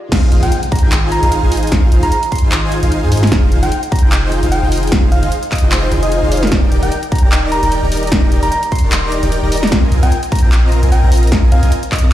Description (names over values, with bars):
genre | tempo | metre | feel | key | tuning
future bass | 150 BPM | 4/4 | swing 55% on 16ths, half-time | unclear | A4 = 441 Hz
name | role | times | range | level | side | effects
swell and impact | sound effects | 0.1-1.7 s | none | -23 LUFS | equal | none
dense compressed supersaw | riff | 0.1-12.1 s | C4 to Bb5 | -19 LUFS | equal | sidechain pumping
long sustained 808-style bass | bass | 0.1-12.1 s | Eb1 to Ab2 | -14 LUFS | equal | sidechain pumping, high-pass filter
big-room dance drum kit | drums | 0.1-12.1 s | crash cymbal, handclaps, hi-hat, snare drum | -20 LUFS | equal | overdrive, high-pass filter on hats, high-pass filter on snare, high-pass filter on cymbals
electronic kick drum | drums | 0.1-12.0 s | none | -13 LUFS | equal | overdrive
soft struck synth lead | melody | 0.4-12.1 s | C5 to C6 | -21 LUFS | equal | chorus, sidechain pumping, ping-pong delay
room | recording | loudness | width
light reverb, digital ambience | played on a big sound system in a bare room, large studio reverb, high-pass filter | -11 LUFS | side -13 dB against mid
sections
0.1-12.1 A section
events
drop 0.1-12.1; impact 0.1-1.7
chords
0.1 Ab6; 3.3 Fm7; 6.5 Ebmaj7; 9.7 Bb9sus4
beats
| 0.12 0.52 0.92 1.32 | 1.72 2.12 2.52 2.92 | 3.32 3.72 4.12 4.52 | 4.92 5.32 5.72 6.12 | 6.52 6.92 7.32 7.72 | 8.12 8.52 8.92 9.32 | 9.72 10.12 10.52 10.92 | 11.32 11.72 12.12